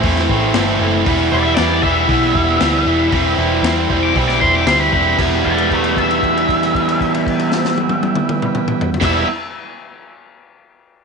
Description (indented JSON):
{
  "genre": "garage rock duo or trio",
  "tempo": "116 BPM",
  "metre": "4/4",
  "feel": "straight",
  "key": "E minor",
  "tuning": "A4 = 438 Hz",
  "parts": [
    { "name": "combo organ", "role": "sustained chords", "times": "0.0-9.2 s", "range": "E4 to C5", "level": "-28 LUFS", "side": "right 9 dB", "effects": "none" },
    { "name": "raw garage guitar", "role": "riff", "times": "0.0-9.3 s", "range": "A2 to E4", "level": "-16 LUFS", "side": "right 1 dB", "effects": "overdrive" },
    { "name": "hollow-body short-scale picked electric bass", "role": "bass", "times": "0.0-9.2 s", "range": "E1 to E2", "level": "-21 LUFS", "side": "equal", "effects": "none" },
    { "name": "crunchy breakbeat drum kit", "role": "drums", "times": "0.0-9.1 s", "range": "crash cymbal, hi-hat, kick drum, snare drum, toms", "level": "-22 LUFS", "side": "left 4 dB", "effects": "none" },
    { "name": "octave-fuzz lead guitar", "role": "melody", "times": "1.3-9.3 s", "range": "D5 to D6", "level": "-19 LUFS", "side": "left 1 dB", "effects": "distortion, tape echo" }
  ],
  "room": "light reverb, studio reverb",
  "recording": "1960s-style stereo, nothing above 10.7 kHz",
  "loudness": "-13 LUFS",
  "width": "side -5 dB against mid",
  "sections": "0.0-5.2 A section; 5.2-9.3 B section",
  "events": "lead electric guitar solo 0.0-5.2; held note 5.2-9.0",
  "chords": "0.0 Am; 1.1 Em; 3.1 C/E; 5.2 Em"
}